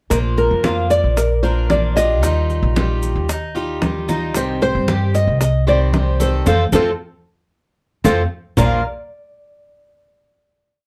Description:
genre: latin, Cuban son and guajira.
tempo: 114 BPM.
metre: 4/4.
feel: straight.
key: Bb major.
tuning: A4 = 440 Hz.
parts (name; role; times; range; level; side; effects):
nylon-string guitar; melody; 0.1-8.8 s; A4 to F5; -21 LUFS; equal; none.
picked steel-string acoustic guitar; accompaniment; 0.1-8.8 s; Bb2 to G4; -27 LUFS; equal; none.
upright bass; bass; 0.1-8.8 s; Bb1 to G2; -21 LUFS; equal; none.
bongos; percussion; 0.1-8.7 s; none; -27 LUFS; equal; none.
congas; percussion; 0.1-8.7 s; none; -25 LUFS; equal; none.
maracas; percussion; 0.1-8.7 s; none; -35 LUFS; equal; none.
Cuban tres; arpeggios; 0.4-8.8 s; Bb3 to Eb5; -27 LUFS; equal; none.
room: light reverb.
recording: dark, warm production.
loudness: -17 LUFS.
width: mono.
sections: 0.1-8.6 verse; 8.6-10.7 final chord.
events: band accent 6.5-8.6; drum fill 8.3.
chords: 0.1 Bb; 2.2 Ebadd9; 4.3 Cm; 6.5 F; 8.6 Bb5.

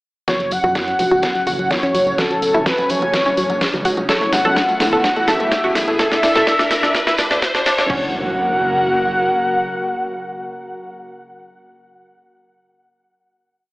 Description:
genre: progressive house.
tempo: 126 BPM.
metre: 4/4.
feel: straight.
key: F# minor.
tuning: A4 = 441 Hz.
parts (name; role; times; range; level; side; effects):
wide unison lead; melody; 0.3-10.9 s; A4 to F#5; -19 LUFS; equal; wide subtle chorus, vintage 12-bit sampler grit, sidechain pumping, tape echo.
airy breathy pad; sustained chords; 0.5-10.9 s; A2 to G#5; -24 LUFS; equal; chorus, sidechain pumping.
analog pluck; arpeggios; 0.3-10.9 s; F#3 to A4; -21 LUFS; equal; chorus, sidechain pumping, dub echo.
dark detuned saw bass; bass; 0.3-9.3 s; F#1 to F#2; -30 LUFS; equal; sidechain pumping.
electronic kick drum; drums; 0.3-8.0 s; none; -26 LUFS; equal; overdrive, high-pass filter on kick.
pop drum kit; drums; 0.3-8.0 s; crash cymbal, hi-hat, snare drum; -21 LUFS; equal; overdrive.
congas and bongos; percussion; 0.3-7.9 s; none; -30 LUFS; right 1 dB; none.
tambourine; percussion; 0.3-7.9 s; none; -34 LUFS; left 1 dB; none.
riser and impact; sound effects; 2.1-10.9 s; none; -25 LUFS; equal; none.
room: moderate lush hall reverb, RT60 1.9 s, digital ambience.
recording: high-pass filter, AM radio sound.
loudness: -15 LUFS.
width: side -20 dB against mid.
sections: 0.3-7.9 build; 7.9-11.7 final chord.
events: build-up 0.3-7.9; drum fill 0.3-7.9; filter sweep on synth pluck 0.3-7.9; filter sweep 0.3-7.9; riser 2.1-7.9.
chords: 0.3 F#m; 4.1 Aadd9/F#; 6.0 Dsus2/F#; 7.9 F#.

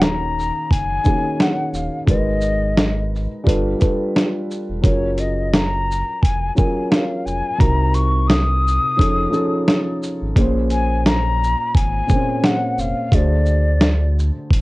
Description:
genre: lo-fi hip hop.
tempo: 87 BPM.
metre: 4/4.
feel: swing 58% on 16ths.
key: unclear.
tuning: A4 = 441 Hz.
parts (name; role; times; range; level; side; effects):
breathy concert flute; melody; 0.0-14.2 s; Db5 to Eb6; -22 LUFS; left 2 dB; low-pass filter.
felt-muted upright piano; accompaniment; 0.0-14.6 s; Bb2 to C5; -22 LUFS; equal; cassette tape, low-pass filter.
sub bass with octave; bass; 0.0-14.6 s; Eb1 to D2; -20 LUFS; equal; none.
dusty soul sampler-style drum kit; drums; 0.0-14.6 s; hi-hat, kick drum, shaker, snare drum; -17 LUFS; equal; overdrive.
room: moderate studio reverb, RT60 0.5 s.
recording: worn, warbling old tape, cassette tape, warbly pitch drift, nothing above 10.5 kHz.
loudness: -16 LUFS.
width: side -20 dB against mid.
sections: 0.0-14.6 A section.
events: none.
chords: 0.0 Ebm7; 2.1 Abm9; 3.5 G9; 4.8 Gbmaj9; 7.6 Cm7b5; 9.0 F7alt; 10.4 Bbm7; 13.1 D7#11.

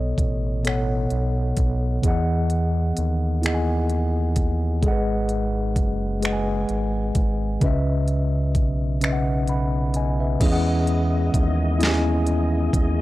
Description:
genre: slow six-eight R&B.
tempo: 43 BPM (dotted quarters).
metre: 6/8.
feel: straight.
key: E major.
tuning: A4 = 440 Hz.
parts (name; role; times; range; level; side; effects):
mellow tine electric piano; accompaniment; 0.0-13.0 s; B2 to B5; -24 LUFS; left 1 dB; medium stereo tremolo.
round analog bass; bass; 0.0-13.0 s; F#1 to E2; -24 LUFS; equal; transformer saturation.
smooth R&B drum kit; drums; 0.2-13.0 s; crash cymbal, finger snaps, hi-hat, kick drum, snare drum; -23 LUFS; equal; none.
tonewheel organ; sustained chords; 10.4-13.0 s; G#3 to D#5; -31 LUFS; right 1 dB; chorus vibrato, slow rotary speaker.
room: little or no reverb.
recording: dry, gritty hardware recording, cassette tape.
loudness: -20 LUFS.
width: side -17 dB against mid.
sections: 0.0-10.4 A section; 10.4-13.0 B section.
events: kick muted 9.0-10.4.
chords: 0.0 B7; 2.0 Emaj9; 4.8 G#m7; 7.6 C#m7; 10.4 Emaj13.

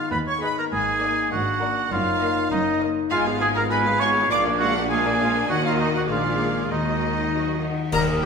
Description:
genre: cinematic, playful, whimsical film cue.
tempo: 100 BPM.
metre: 2/4.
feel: straight.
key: Eb minor.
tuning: A4 = 440 Hz.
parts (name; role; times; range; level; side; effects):
warm studio violin section; melody; 0.0-8.3 s; D5 to Bb5; -30 LUFS; left 4 dB; none.
mellow oboe; second line; 0.0-8.3 s; Eb4 to D5; -24 LUFS; right 2 dB; none.
rich studio violin section; second line; 0.0-8.3 s; Eb5 to D6; -31 LUFS; left 1 dB; none.
warm studio viola section; accompaniment; 0.0-8.3 s; G3 to Bb4; -30 LUFS; right 1 dB; none.
dark French horn section; sustained chords; 0.0-8.3 s; Gb3 to F4; -29 LUFS; left 4 dB; none.
concert harp; arpeggios; 0.0-8.3 s; Gb2 to Gb5; -31 LUFS; left 7 dB; none.
rich studio cello section; bass; 0.1-7.7 s; Eb2 to Eb3; -30 LUFS; right 2 dB; none.
rich studio double bass section; bass; 0.1-8.3 s; Gb1 to Eb2; -33 LUFS; right 4 dB; none.
cymbal swell, clash cymbals and concert bass drum; percussion; 5.5-8.3 s; none; -33 LUFS; equal; none.
mellow flute section; second line; 7.9-8.3 s; Eb6; -35 LUFS; equal; none.
warm clarinet; second line; 7.9-8.3 s; G4 to Bb4; -26 LUFS; left 3 dB; none.
mellow bassoon; accompaniment; 7.9-8.3 s; G3; -36 LUFS; right 4 dB; none.
room: wet scoring stage reverb, RT60 1.7 s.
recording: minimal, uncompressed stereo recording.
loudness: -20 LUFS.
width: side -5 dB against mid.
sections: 0.0-7.9 A section.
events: band accent 7.9-8.3.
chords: 0.0 Abm; 0.7 Bb7/Ab; 1.9 Ebm/Gb; 3.1 Fdim/Ab; 4.3 Bb7; 5.5 Ebm; 6.1 Bb7; 6.7 Ebm.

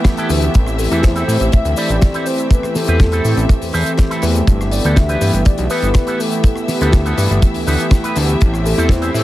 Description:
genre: nu-disco, nu disco.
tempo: 122 BPM.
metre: 4/4.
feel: straight.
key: G major.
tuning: A4 = 441 Hz.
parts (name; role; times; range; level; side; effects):
warm analog pad; accompaniment; 0.0-9.2 s; E3 to G4; -20 LUFS; equal; chorus, sidechain pumping, tape echo.
warm studio string section; sustained chords; 0.0-9.2 s; E4 to E5; -27 LUFS; left 3 dB; sidechain pumping.
damped 70s drum kit; drums; 0.0-9.2 s; cabasa, hi-hat, rim click, snare drum; -24 LUFS; left 1 dB; tape echo.
kick drum; drums; 0.0-9.0 s; none; -11 LUFS; equal; none.
electric guitar with an envelope filter; riff; 0.2-9.2 s; B3 to C5; -24 LUFS; right 2 dB; analog chorus, tape echo.
fat analog bass; bass; 0.3-9.2 s; G1 to A2; -16 LUFS; equal; none.
soft octave-layered synth lead; melody; 0.8-9.2 s; A4 to E5; -23 LUFS; left 1 dB; chorus, tape echo.
room: studio reverb.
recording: echo-heavy mix.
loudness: -12 LUFS.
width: side -15 dB against mid.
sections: 0.0-9.2 A section.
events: none.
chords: 0.0 G69; 0.5 Am7; 4.5 G69; 8.4 Am7.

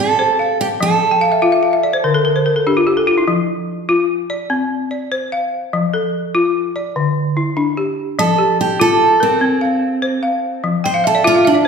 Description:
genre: west african traditional.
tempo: 98 BPM (dotted quarters).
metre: 12/8.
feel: straight.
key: F major.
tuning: A4 = 440 Hz.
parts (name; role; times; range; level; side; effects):
picked steel-string acoustic guitar; melody; 0.0-1.6, 8.2-11.7 s; C4 to C5; -16 LUFS; right 4 dB; tape echo.
balafon; arpeggios; 0.0-11.7 s; D3 to G5; -15 LUFS; left 2 dB; none.
room: wet recital hall reverb, RT60 1.4 s.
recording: heard from further back in the room.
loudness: -14 LUFS.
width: side -6 dB against mid.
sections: 0.0-8.2 A section; 8.2-11.7 B section.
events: balafon fill 1.1-3.3, 10.8-11.7; steel-string acoustic guitar solo 8.2-11.7.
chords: 0.0 C5; 0.8 N.C.; 3.3 Dm/F; 4.5 Csus24; 5.7 F; 7.0 Dsus24; 8.2 F; 9.4 C7sus4; 10.6 N.C..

